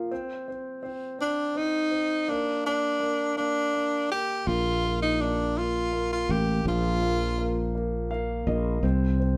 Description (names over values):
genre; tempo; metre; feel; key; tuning
six-eight pop ballad; 55 BPM (dotted quarters); 6/8; straight; Bb major; A4 = 439 Hz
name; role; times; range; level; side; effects
clear concert grand piano; accompaniment; 0.0-9.4 s; F3 to F5; -35 LUFS; equal; none
clear tenor saxophone; melody; 1.2-7.7 s; D4 to G4; -28 LUFS; equal; none
sustaining fretless electric bass; bass; 4.5-9.4 s; A1 to C2; -29 LUFS; equal; none
room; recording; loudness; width
moderate studio reverb, RT60 0.8 s; band playing live in one room; -27 LUFS; mono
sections
0.0-9.4 A section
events
grand piano fill 7.7-8.8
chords
0.1 N.C.; 4.5 Bb5; 8.8 N.C.